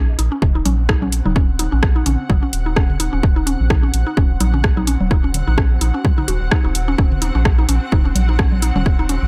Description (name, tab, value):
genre	minimal techno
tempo	128 BPM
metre	4/4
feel	swing 56% on 16ths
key	Eb dorian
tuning	A4 = 440 Hz
part	round analog bass	bass	0.0-9.3 s	Eb1 to Bb1	-21 LUFS	equal	sidechain pumping
part	granular cloud pad	texture	0.9-9.3 s	Gb5	-34 LUFS	equal	built-in reverb, sidechain pumping
part	swarming drone	texture	0.3-9.3 s	C4	-36 LUFS	equal	built-in reverb, sidechain pumping
part	mallet-like synth pluck	riff	0.2-9.1 s	Db4 to Gb4	-27 LUFS	equal	chorus, sidechain pumping, dub echo
part	house drum kit	drums	0.2-9.2 s	hi-hat, rim click	-25 LUFS	equal	overdrive, tape echo
part	electronic kick drum	drums	0.4-9.0 s	none	-18 LUFS	equal	overdrive
part	electronic toms and congas	percussion	0.4-8.8 s	none	-28 LUFS	equal	dub echo
room	little or no reverb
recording	echo-heavy mix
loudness	-17 LUFS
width	mono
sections	0.0-9.3 A section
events	none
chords	0.0 Ebm